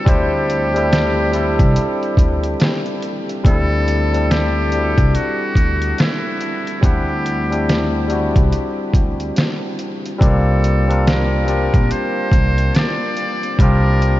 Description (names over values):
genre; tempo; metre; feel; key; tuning
lo-fi hip hop; 71 BPM; 4/4; swing 61% on 16ths; unclear; A4 = 445 Hz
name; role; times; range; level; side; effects
trumpet with metal mute; melody; 0.0-14.2 s; E4 to D5; -24 LUFS; equal; low-pass filter, tape echo
barky tine electric piano; accompaniment; 0.0-14.2 s; G3 to F#5; -20 LUFS; left 1 dB; cassette tape, low-pass filter
upright bass; bass; 0.1-14.2 s; Bb1 to D2; -18 LUFS; equal; none
trip hop sampler-style drum kit; drums; 0.1-14.2 s; hi-hat, kick drum, snare drum; -18 LUFS; equal; none
room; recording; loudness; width
moderate huge ambient reverb, RT60 7.9 s; dreamy mix soaked in reverb, vinyl crackle, nothing above 7.6 kHz; -14 LUFS; side -15 dB against mid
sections
0.0-3.4 A section; 3.4-14.2 B section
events
none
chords
0.0 D9sus4; 10.2 C9sus4